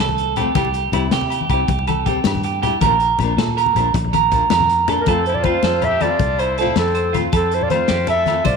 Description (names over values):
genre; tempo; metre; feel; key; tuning
highlife guitar band; 106 BPM (dotted quarters); 12/8; straight; F major; A4 = 438 Hz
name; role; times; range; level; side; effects
clean electric guitar; arpeggios; 0.0-8.6 s; E4 to C5; -19 LUFS; right 8 dB; spring reverb, tape echo
fingered electric bass; bass; 0.0-8.6 s; Bb1 to C3; -23 LUFS; equal; none
agogo bells; percussion; 0.0-8.5 s; none; -31 LUFS; left 12 dB; none
congas; percussion; 0.1-8.5 s; none; -26 LUFS; left 8 dB; none
crunchy breakbeat drum kit; drums; 0.2-8.5 s; hi-hat, kick drum, snare drum; -24 LUFS; left 5 dB; none
nylon-string guitar; accompaniment; 0.4-8.4 s; F3 to F4; -27 LUFS; left 11 dB; none
breathy clarinet; melody; 5.0-8.6 s; A4 to E5; -19 LUFS; equal; none
bright trumpet; second line; 5.0-8.6 s; C4 to A4; -28 LUFS; left 9 dB; none
room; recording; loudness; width
moderate echo chamber reverb, RT60 1.9 s, small room ambience; 1960s-style stereo with parts hard left and right; -15 LUFS; side -5 dB against mid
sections
0.0-5.1 A section; 5.1-8.6 B section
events
none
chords
0.0 F; 0.6 C; 2.8 Bb; 5.1 F